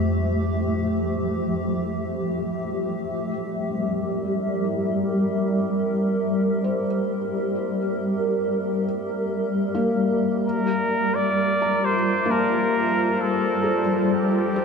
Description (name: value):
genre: ambient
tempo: 66 BPM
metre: 4/4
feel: straight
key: G dorian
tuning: A4 = 437 Hz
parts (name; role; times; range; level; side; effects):
- granular cloud pad; sustained chords; 0.0-14.6 s; F3 to E5; -23 LUFS; equal; built-in reverb
- felt-muted upright piano; arpeggios; 0.0-14.6 s; A3 to Bb5; -29 LUFS; left 2 dB; diffuse ambient delay
- deep rumbling drone; bass; 0.0-3.1 s; F2; -28 LUFS; equal; built-in reverb, tube saturation
- clear flugelhorn; melody; 10.5-14.6 s; G4 to D5; -23 LUFS; equal; diffuse ambient delay
room: wet huge ambient reverb, RT60 7.5 s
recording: cassette tape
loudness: -21 LUFS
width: side -5 dB against mid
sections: 0.0-3.1 A section; 3.1-14.6 B section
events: none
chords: 0.0 Fmaj9; 3.1 Gm6; 10.4 C9sus4